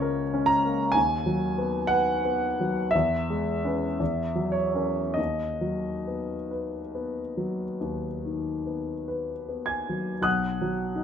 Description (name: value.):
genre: classical, romantic nocturne for solo piano.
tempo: 44-64 BPM.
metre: 4/4.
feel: rubato.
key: B major.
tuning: A4 = 440 Hz.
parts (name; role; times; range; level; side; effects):
clear grand piano; solo; 0.0-11.0 s; B1 to G#6; -25 LUFS; equal; none.
room: light reverb.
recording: none.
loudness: -25 LUFS.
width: side -8 dB against mid.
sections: 0.0-10.3 A section.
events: none.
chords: 0.0 A#dim/C#; 1.0 B/D#; 2.9 C#m7/E; 4.0 F#7/E; 5.2 B/D#; 10.3 B.